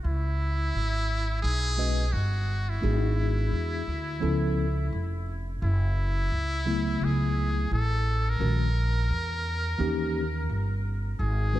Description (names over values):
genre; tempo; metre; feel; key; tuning
hip hop, jazz-hop; 86 BPM; 4/4; swing 61% on 16ths; C# minor; A4 = 440 Hz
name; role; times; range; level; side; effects
trumpet with metal mute; melody; 0.0-11.6 s; E4 to A#4; -32 LUFS; equal; tape echo
upright bass; bass; 0.0-11.6 s; E#1 to E2; -26 LUFS; equal; none
mellow tine electric piano; accompaniment; 1.8-11.6 s; C#3 to D#5; -32 LUFS; left 1 dB; medium stereo tremolo
room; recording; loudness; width
light reverb, small room ambience; none; -25 LUFS; side -14 dB against mid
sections
0.0-11.6 A section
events
none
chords
0.0 C#m7; 2.8 G#m7b5; 4.2 C#7alt; 5.6 F#m9; 8.4 A#m7b5; 9.8 D#7b9